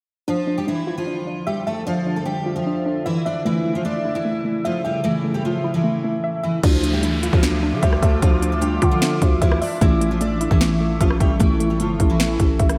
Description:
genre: hip hop, trap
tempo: 151 BPM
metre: 4/4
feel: half-time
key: D harmonic minor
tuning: A4 = 445 Hz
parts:
  - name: picked steel-string acoustic guitar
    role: melody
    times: 0.3-12.8 s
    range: E3 to D5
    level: -26 LUFS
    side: equal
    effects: analog chorus, analog delay
  - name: soft round pluck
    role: accompaniment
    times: 0.3-12.8 s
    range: A3 to E5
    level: -27 LUFS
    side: equal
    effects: chorus
  - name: deep dark ambient pad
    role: sustained chords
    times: 1.0-12.8 s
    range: C#3 to D6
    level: -31 LUFS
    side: equal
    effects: chorus, built-in reverb
  - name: growling 808-style bass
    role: bass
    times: 6.6-12.8 s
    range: G1 to D3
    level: -25 LUFS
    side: equal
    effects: none
  - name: trap drum kit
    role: drums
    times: 6.6-12.8 s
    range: crash cymbal, hi-hat, kick drum, rim click, snare drum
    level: -21 LUFS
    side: equal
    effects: none
  - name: downlifter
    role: sound effects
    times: 6.6-9.8 s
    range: none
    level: -35 LUFS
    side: equal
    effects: none
room: wet lush hall reverb, RT60 1.8 s, digital ambience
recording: dreamy mix soaked in reverb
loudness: -20 LUFS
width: mono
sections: 0.3-6.6 A section; 6.6-12.8 B section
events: none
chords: 0.3 Dmadd9; 3.5 A; 6.6 Dmadd9; 9.8 A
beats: | 0.28 0.67 1.07 1.47 | 1.87 2.26 2.66 3.06 | 3.46 3.85 4.25 4.65 | 5.04 5.44 5.84 6.24 | 6.63 7.03 7.43 7.83 | 8.22 8.62 9.02 9.42 | 9.81 10.21 10.61 11.01 | 11.40 11.80 12.20 12.60

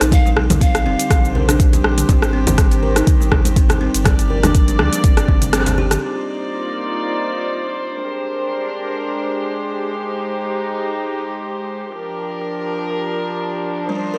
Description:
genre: afro house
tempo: 122 BPM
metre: 4/4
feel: swing 55% on 16ths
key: C minor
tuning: A4 = 441 Hz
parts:
  - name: breathy bright pan flute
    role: melody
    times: 0.0-1.3 s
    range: F5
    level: -26 LUFS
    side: equal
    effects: analog delay
  - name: dark chamber string section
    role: sustained chords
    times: 0.0-14.2 s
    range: D3 to D5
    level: -25 LUFS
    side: equal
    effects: sidechain pumping, low-pass filter
  - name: buzzing kalimba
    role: arpeggios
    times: 0.0-6.0, 13.9-14.2 s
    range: G3 to Bb4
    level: -25 LUFS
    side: equal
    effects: sidechain pumping, analog delay
  - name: warm sub bass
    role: bass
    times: 0.0-6.0 s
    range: F1 to D2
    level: -22 LUFS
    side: equal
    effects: sidechain pumping
  - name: afro-pop drum kit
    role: drums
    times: 0.0-14.1 s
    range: cabasa, hi-hat, rim click, toms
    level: -23 LUFS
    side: equal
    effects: low-pass filter on hats, low-pass filter on perc, low-pass filter on snare, low-pass filter on toms
  - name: electronic kick drum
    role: drums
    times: 0.1-5.4 s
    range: none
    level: -16 LUFS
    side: equal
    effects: none
  - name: congas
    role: percussion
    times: 0.1-5.9 s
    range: none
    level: -25 LUFS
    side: equal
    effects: none
room: light reverb, studio reverb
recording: dry, gritty hardware recording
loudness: -18 LUFS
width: mono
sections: 0.0-6.0 A section; 6.0-14.2 B section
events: kick drops out 5.5-6.0; band accent 5.5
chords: 0.1 Bb69; 2.1 Abmaj7; 4.1 Gm7; 6.0 Cm11; 8.0 Bb13; 10.0 Abmaj7; 11.9 Gm7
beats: | 0.12 0.61 1.10 1.60 | 2.09 2.58 3.07 3.56 | 4.05 4.55 5.04 5.53 | 6.02 6.51 7.01 7.50 | 7.99 8.48 8.97 9.46 | 9.96 10.45 10.94 11.43 | 11.92 12.42 12.91 13.40 | 13.89

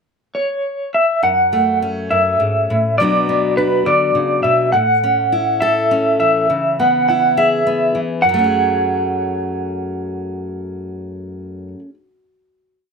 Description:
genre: indie folk with a building arrangement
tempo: 68 BPM (dotted quarters)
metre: 6/8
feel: straight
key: F# minor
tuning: A4 = 442 Hz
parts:
  - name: electric guitar through a small old amp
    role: melody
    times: 0.3-11.7 s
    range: B4 to F#5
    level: -15 LUFS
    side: right 1 dB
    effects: tremolo, slapback echo
  - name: fingerpicked steel-string acoustic guitar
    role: accompaniment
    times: 1.2-11.9 s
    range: F#2 to A4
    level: -20 LUFS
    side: left 2 dB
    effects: none
room: moderate large studio reverb, RT60 0.8 s, small room ambience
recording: none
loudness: -14 LUFS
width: side -5 dB against mid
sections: 0.0-1.2 pickup bar; 1.2-8.2 verse; 8.2-11.7 final chord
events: none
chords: 0.0 N.C.; 1.2 F#madd9; 3.0 Bm; 4.7 A; 6.5 C#m7; 8.2 F#madd9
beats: 0.35 | 1.23 2.11 | 2.98 3.86 | 4.74 5.62 | 6.49 7.37 | 8.24 9.12 | 9.99 10.87

